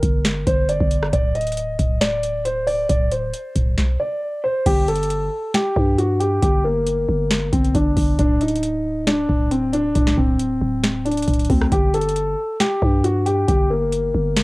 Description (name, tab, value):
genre	hip hop, trap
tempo	136 BPM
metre	4/4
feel	half-time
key	G harmonic minor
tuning	A4 = 440 Hz
part	dark grand piano	melody	0.0-14.4 s	Bb3 to Eb5	-21 LUFS	equal	low-pass filter, cassette tape, tape echo
part	growling 808-style bass	bass	0.0-14.4 s	D1 to G2	-22 LUFS	equal	none
part	booming analog drum machine	drums	0.0-14.4 s	crash cymbal, hi-hat, kick drum, rim click, snare drum	-20 LUFS	equal	cassette tape
room	digital ambience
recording	home recording on cassette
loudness	-17 LUFS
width	side -22 dB against mid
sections	0.0-4.7 A section; 4.7-14.4 B section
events	none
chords	0.0 Gm; 1.1 Csus2/D; 4.7 Gm; 8.2 Csus2/D; 11.7 Gm